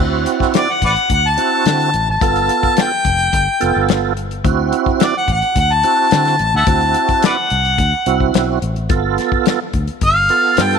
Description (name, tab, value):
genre	straight-eighth soul blues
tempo	108 BPM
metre	4/4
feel	straight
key	D mixolydian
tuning	A4 = 440 Hz
part	tonewheel organ	accompaniment	0.0-10.8 s	B3 to A4	-19 LUFS	right 12 dB	slow rotary speaker, overdrive, chorus vibrato
part	fingered electric bass	bass	0.0-10.8 s	F1 to D3	-19 LUFS	left 1 dB	none
part	damped 70s drum kit	drums	0.3-10.8 s	hi-hat, kick drum, snare drum	-19 LUFS	left 5 dB	none
part	warm harmonica	melody	0.6-10.8 s	B4 to A5	-15 LUFS	left 2 dB	overdrive
room	light reverb, studio reverb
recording	1960s-style stereo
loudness	-13 LUFS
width	side -6 dB against mid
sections	0.0-10.8 A section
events	none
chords	0.0 D9; 2.2 G9; 4.4 D9; 8.9 G9